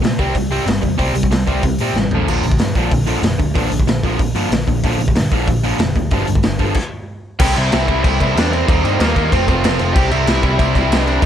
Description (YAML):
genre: punk rock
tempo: 187 BPM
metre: 4/4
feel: straight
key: C major from 7.4 s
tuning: A4 = 440 Hz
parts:
  - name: crunchy overdriven guitar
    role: riff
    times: 0.0-11.3 s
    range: G2 to F4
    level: -18 LUFS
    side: equal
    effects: none
  - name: overdriven picked electric bass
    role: bass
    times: 0.0-11.3 s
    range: F1 to Bb2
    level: -20 LUFS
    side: equal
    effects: none
  - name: raw garage drum kit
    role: drums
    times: 0.0-11.3 s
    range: crash cymbal, hi-hat, kick drum, snare drum, toms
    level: -18 LUFS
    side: equal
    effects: none
  - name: lead guitar through a small cranked amp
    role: melody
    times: 7.4-11.2 s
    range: Bb3 to G5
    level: -21 LUFS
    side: right 1 dB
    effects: overdrive
room: little or no reverb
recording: none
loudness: -14 LUFS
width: side -10 dB against mid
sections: 0.0-7.4 A section; 7.4-11.3 B section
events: drum fill 2.0-2.3; stop 6.8-7.4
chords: 0.0 C5; 2.1 Bb; 6.1 G5; 7.4 C; 8.7 Eb; 9.3 F; 10.0 C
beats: 0.03 0.35 0.67 | 0.99 1.31 1.63 1.95 | 2.27 2.59 2.91 3.23 | 3.55 3.87 4.20 4.51 | 4.84 5.16 5.48 5.80 | 6.12 6.44 6.76 7.08 | 7.40 7.72 8.04 8.36 | 8.68 8.99 9.31 9.63 | 9.95 10.27 10.59 10.91 | 11.23